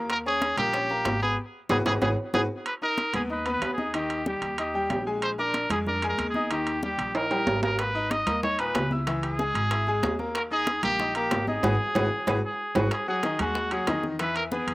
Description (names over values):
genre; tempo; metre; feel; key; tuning
latin, salsa; 187 BPM; 4/4; straight; G# harmonic minor; A4 = 442 Hz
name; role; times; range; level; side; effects
bright grand piano; accompaniment; 0.0-14.7 s; A#2 to E6; -30 LUFS; left 2 dB; slapback echo
upright bass; bass; 0.0-14.7 s; G#1 to E#2; -32 LUFS; equal; none
clear trumpet; melody; 0.1-14.7 s; F#4 to D#5; -28 LUFS; equal; none
bongos; percussion; 0.1-2.4, 7.8-14.7 s; none; -35 LUFS; left 2 dB; none
congas; percussion; 0.1-14.7 s; none; -34 LUFS; equal; none
timbales; percussion; 0.1-14.7 s; none; -32 LUFS; right 3 dB; slapback echo
room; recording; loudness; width
little or no reverb; recorded outdoors, with no room sound; -24 LUFS; side -20 dB against mid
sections
0.0-2.7 A section; 2.7-12.9 A section; 12.9-14.7 B section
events
band accent 1.4-2.7, 11.6-12.9; drum fill 1.9-2.7, 7.1-7.8, 11.6-12.9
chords
0.1 D#7; 1.4 G#m7; 2.7 G#madd9/D#; 3.9 D#; 5.2 A#7; 6.5 D#; 7.8 G#madd9; 9.1 C#m; 10.4 D#; 11.6 G#m7; 12.9 G#5; 14.2 E